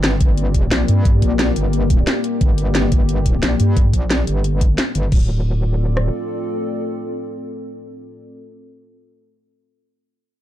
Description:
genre	dark technical drum and bass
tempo	177 BPM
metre	4/4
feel	straight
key	D minor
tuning	A4 = 442 Hz
part	dark analog pad	sustained chords	0.0-8.2 s	A3 to D5	-25 LUFS	left 3 dB	chorus, sidechain pumping
part	metallic wobble bass	bass	0.0-6.1 s	D1 to G2	-18 LUFS	equal	chorus, overdrive
part	drum and bass drum kit	drums	0.0-5.2 s	crash cymbal, hi-hat, snare drum	-21 LUFS	equal	none
part	warbly tape-like pad	texture	0.0-8.3 s	C4 to Bb4	-30 LUFS	left 1 dB	chorus, built-in reverb, sidechain pumping
part	drum and bass drum kit	drums	0.2-6.0 s	kick drum, rim click	-16 LUFS	equal	none
room	digital ambience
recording	dark, warm production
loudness	-15 LUFS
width	side -12 dB against mid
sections	0.0-5.1 A section; 5.1-7.8 B section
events	fade-out on ambient pad 0.0-5.1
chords	0.0 Gm; 5.1 Dm

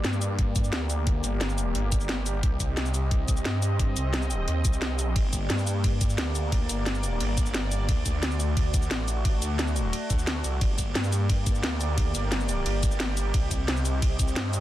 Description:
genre	dark technical drum and bass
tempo	176 BPM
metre	4/4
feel	straight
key	G harmonic minor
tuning	A4 = 444 Hz
part	sweeping resonant pad	sustained chords	0.0-14.6 s	A3 to Eb5	-33 LUFS	equal	chorus, sidechain pumping
part	snarling distorted saw bass	bass	0.0-14.6 s	G1 to G2	-28 LUFS	equal	distortion, overdrive, sidechain pumping
part	drum and bass drum kit	drums	0.0-14.6 s	hi-hat, ride cymbal, shaker, snare drum	-31 LUFS	equal	none
part	electronic kick drum	drums	0.4-14.3 s	none	-25 LUFS	equal	none
room	digital ambience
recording	dense, heavily limited modern master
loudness	-24 LUFS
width	side -14 dB against mid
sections	0.0-14.6 A section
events	none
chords	0.0 Gm; 2.4 Cm; 5.2 Gm; 7.9 D; 10.6 Gm; 13.3 Cm

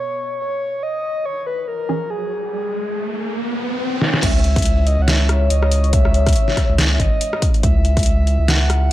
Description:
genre	deep dubstep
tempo	141 BPM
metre	4/4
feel	swing 57% on 16ths, half-time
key	C# minor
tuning	A4 = 440 Hz
part	breathy flute-like synth lead	melody	0.0-8.9 s	G#4 to F#5	-24 LUFS	equal	chorus, dub echo
part	dark analog pad	sustained chords	0.0-8.9 s	G#3 to E5	-27 LUFS	left 3 dB	chorus, phaser
part	riser	sound effects	1.8-4.2 s	none	-25 LUFS	left 1 dB	none
part	filtered dub chord stab	stabs	1.9-2.1 s	E3 to G#4	-22 LUFS	right 6 dB	lush chorus
part	dubstep drum kit	drums	4.0-8.8 s	crash cymbal, hi-hat, rim click, snare drum	-21 LUFS	equal	low-pass filter on snare, low-pass filter on hats, low-pass filter on cymbals, low-pass filter on room
part	saturated sub bass	bass	4.2-8.9 s	G#1 to C#2	-16 LUFS	equal	none
part	electronic kick drum	drums	4.2-8.0 s	none	-17 LUFS	equal	none
room	little or no reverb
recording	dry, gritty hardware recording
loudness	-16 LUFS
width	side -14 dB against mid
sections	0.0-4.2 A section; 4.2-8.9 B section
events	riser 1.8-4.2; drum fill 4.0; drop 4.2-8.9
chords	0.0 C#m

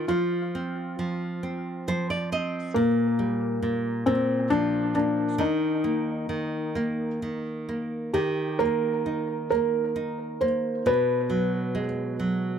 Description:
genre	children's music, lullaby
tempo	45 BPM (dotted quarters)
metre	6/8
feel	rubato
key	Eb major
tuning	A4 = 440 Hz
part	felt-muted upright piano	melody	0.0-11.8 s	Bb3 to C5	-26 LUFS	left 1 dB	tape echo
part	nylon-string guitar	accompaniment	0.0-12.6 s	Bb2 to Eb5	-28 LUFS	right 2 dB	none
room	light reverb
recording	none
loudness	-24 LUFS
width	side -8 dB against mid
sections	0.0-8.1 A section; 8.1-12.6 B section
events	nylon-string guitar fill 1.4-2.7, 12.2-12.6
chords	0.1 F5; 2.7 Gm/Bb; 4.1 Bb5; 5.4 Eb5; 10.9 B5

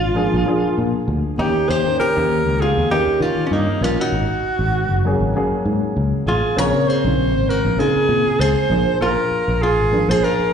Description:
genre	jazz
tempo	98 BPM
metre	4/4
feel	swing 56% on 16ths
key	Bb minor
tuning	A4 = 444 Hz
part	clear alto saxophone	melody	0.0-10.5 s	Eb4 to Db5	-20 LUFS	right 1 dB	slapback echo
part	archtop guitar, miked and amplified	second line	0.0-10.5 s	Bb3 to Bb4	-25 LUFS	equal	slapback echo
part	dark concert grand piano	accompaniment	0.0-10.5 s	Db3 to Bb4	-22 LUFS	left 1 dB	slapback echo
part	fretless electric bass	bass	0.0-10.4 s	Gb1 to Eb3	-20 LUFS	equal	none
room	light reverb, studio reverb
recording	live gig heard through the venue's PA, club reverb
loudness	-16 LUFS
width	side -7 dB against mid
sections	0.0-10.5 A section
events	none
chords	0.0 Bb7; 1.4 Eb7; 4.1 Ab9sus4; 6.6 Bbm9; 8.7 Bb7

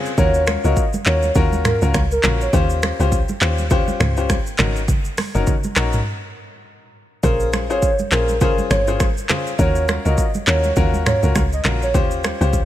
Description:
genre	afrobeats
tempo	102 BPM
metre	4/4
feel	swing 58% on 16ths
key	Eb dorian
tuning	A4 = 440 Hz
part	clear grand piano	accompaniment	0.0-12.6 s	Db4 to C5	-23 LUFS	left 6 dB	none
part	afro-pop drum kit	drums	0.1-12.7 s	finger snaps, handclaps, hi-hat, kick drum, rim click, shaker, toms	-20 LUFS	equal	overdrive
part	hollow clarinet-like synth lead	melody	0.2-2.5, 7.2-11.9 s	Bb4 to Eb5	-23 LUFS	right 1 dB	chorus, ping-pong delay
part	woody log drum bass	bass	0.2-12.7 s	Gb1 to Eb2	-20 LUFS	equal	none
part	congas	percussion	0.2-12.4 s	none	-28 LUFS	right 4 dB	none
room	little or no reverb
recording	none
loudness	-16 LUFS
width	side -13 dB against mid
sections	0.0-12.7 A section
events	break 6.1-7.2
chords	0.2 Ebm9; 2.5 Eb13; 4.6 Ab9sus4; 7.2 Bbm9; 9.6 Ebm9; 11.9 Eb13

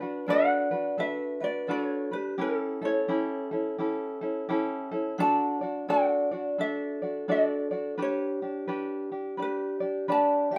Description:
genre	Hawaiian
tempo	86 BPM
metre	4/4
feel	swing 62% on 8ths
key	unclear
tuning	A4 = 436 Hz
part	ukulele	melody	0.0-10.6 s	A4 to A5	-32 LUFS	equal	none
part	vibraphone with medium mallets	second line	0.0-10.6 s	E4 to F#5	-34 LUFS	equal	none
part	tenor ukulele	accompaniment	0.0-10.6 s	C#4 to D5	-33 LUFS	equal	none
room	moderate studio reverb, RT60 0.7 s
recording	none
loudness	-29 LUFS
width	mono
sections	0.0-10.6 A section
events	none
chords	0.0 Bm7; 2.4 A7; 5.2 D; 8.0 G

